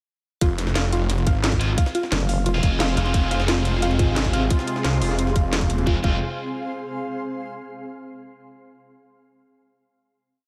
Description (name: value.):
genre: dark technical drum and bass.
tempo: 176 BPM.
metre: 4/4.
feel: straight.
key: F minor.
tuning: A4 = 440 Hz.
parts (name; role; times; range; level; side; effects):
warbly dusty pluck; arpeggios; 0.4-6.2 s; F4 to F5; -32 LUFS; equal; chorus, sidechain pumping, diffuse ambient delay.
snarling distorted saw bass; bass; 0.4-6.2 s; F1 to C2; -25 LUFS; equal; distortion.
drum and bass drum kit; drums; 0.4-5.8 s; hi-hat, snare drum; -30 LUFS; equal; none.
electronic kick drum; drums; 0.4-6.1 s; none; -23 LUFS; equal; none.
jungle sampler-style drum kit; drums; 0.4-5.9 s; ride cymbal, snare drum; -39 LUFS; equal; none.
granular cloud pad; texture; 1.9-7.2 s; C4 to C6; -33 LUFS; equal; built-in reverb, sidechain pumping.
tight distorted guitar; stabs; 1.6-6.2 s; Ab3 to F4; -32 LUFS; equal; distortion, diffuse ambient delay.
vowel-sweep wobble bass; bass; 2.1-3.0 s; F1 to Gb1; -25 LUFS; equal; chorus.
sweeping resonant pad; sustained chords; 3.1-6.0 s; C3 to F4; -32 LUFS; equal; chorus, sidechain pumping.
room: moderate lush hall reverb, RT60 1.9 s.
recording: dreamy mix soaked in reverb.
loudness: -22 LUFS.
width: mono.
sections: 0.4-5.9 drop; 5.9-7.2 final chord.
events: drop 0.4-5.9.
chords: 0.4 Fm.